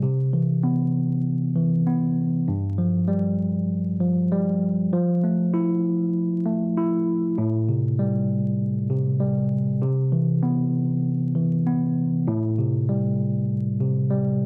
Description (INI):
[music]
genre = hip hop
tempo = 98 BPM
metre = 4/4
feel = swing 56% on 16ths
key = A minor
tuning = A4 = 443 Hz
[part]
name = mellow tine electric piano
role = solo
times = 0.0-14.5 s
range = G2 to E4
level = -23 LUFS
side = equal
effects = cassette tape, high-pass filter, low-pass filter
[sound]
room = moderate echo chamber reverb, RT60 2.0 s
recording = dark, warm production, vinyl crackle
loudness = -23 LUFS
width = mono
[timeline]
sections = 0.0-7.4 A section; 7.4-14.5 B section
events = none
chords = 0.0 Cmaj7; 2.5 Fsus2/G; 4.9 Fmaj7; 7.4 Am7; 9.8 Cmaj7; 12.3 Am7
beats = | 0.03 0.64 1.25 1.86 | 2.48 3.09 3.70 4.31 | 4.93 5.54 6.15 6.76 | 7.38 7.99 8.60 9.21 | 9.82 10.44 11.05 11.66 | 12.27 12.88 13.50 14.11